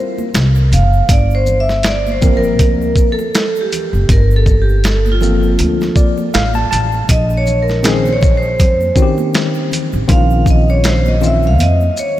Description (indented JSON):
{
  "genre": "hip hop, jazz-hop",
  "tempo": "80 BPM",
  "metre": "4/4",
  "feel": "swing 57% on 16ths",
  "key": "unclear",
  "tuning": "A4 = 441 Hz",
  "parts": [
    { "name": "tine electric piano", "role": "accompaniment", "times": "0.0-11.5 s", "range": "Eb3 to A5", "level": "-19 LUFS", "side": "left 1 dB", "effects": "medium stereo tremolo" },
    { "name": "congas and egg shaker", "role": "percussion", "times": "0.2-12.2 s", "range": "none", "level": "-29 LUFS", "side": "right 4 dB", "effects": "none" },
    { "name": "upright bass", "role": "bass", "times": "0.3-11.9 s", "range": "F#1 to F2", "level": "-14 LUFS", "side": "equal", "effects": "none" },
    { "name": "dusty soul sampler-style drum kit", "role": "drums", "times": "0.3-12.2 s", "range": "hi-hat, kick drum, shaker, snare drum", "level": "-15 LUFS", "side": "equal", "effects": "none" },
    { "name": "vibraphone with hard mallets", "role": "melody", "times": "0.7-12.2 s", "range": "F4 to F5", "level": "-18 LUFS", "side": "right 1 dB", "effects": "diffuse ambient delay" }
  ],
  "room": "light reverb, small room ambience",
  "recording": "none",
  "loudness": "-11 LUFS",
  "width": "side -14 dB against mid",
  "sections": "0.0-12.2 A section",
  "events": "vibraphone solo 0.0-12.2; tine electric piano fill 5.6-7.1",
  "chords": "0.0 Dm11 (rootless); 1.1 Gm11; 7.1 Bbmadd9"
}